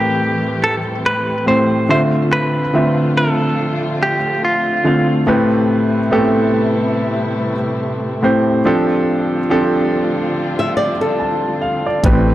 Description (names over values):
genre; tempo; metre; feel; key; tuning
contemporary R&B; 71 BPM; 4/4; swing 58% on 16ths; unclear; A4 = 441 Hz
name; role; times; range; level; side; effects
direct-recorded clean electric guitar; melody; 0.0-5.1 s; F4 to C5; -18 LUFS; right 1 dB; spring reverb, tape echo
clear grand piano; accompaniment; 0.0-12.3 s; A2 to A5; -15 LUFS; equal; none
dark studio string section; sustained chords; 0.0-12.3 s; C3 to G4; -24 LUFS; left 1 dB; none
flamenco guitar; arpeggios; 10.6-12.0 s; A4 to E5; -19 LUFS; left 1 dB; tape echo
mellow tine electric piano; bass; 12.0-12.3 s; A1; -15 LUFS; equal; fast stereo tremolo
smooth R&B drum kit; drums; 12.0-12.3 s; hi-hat, kick drum; -13 LUFS; equal; none
room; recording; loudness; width
studio ambience; dry, gritty hardware recording; -14 LUFS; side -14 dB against mid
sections
0.0-12.3 A section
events
none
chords
0.0 Am9; 1.9 Dm7; 5.3 Am9; 8.7 F69